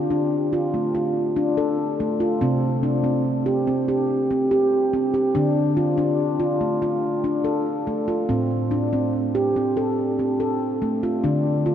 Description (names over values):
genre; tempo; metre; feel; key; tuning
world meditative, meditative tuned percussion; 143 BPM (eighths); 7/8; straight; D minor pentatonic; A4 = 442 Hz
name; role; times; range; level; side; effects
handpan; solo; 0.0-11.7 s; A2 to A4; -20 LUFS; equal; analog delay
room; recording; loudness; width
wet huge ambient reverb, RT60 7.9 s; dreamy mix soaked in reverb; -20 LUFS; side -9 dB against mid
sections
0.0-11.7 A section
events
none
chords
0.0 Dm; 2.4 C5; 5.4 Dm; 8.3 Am; 11.2 Dm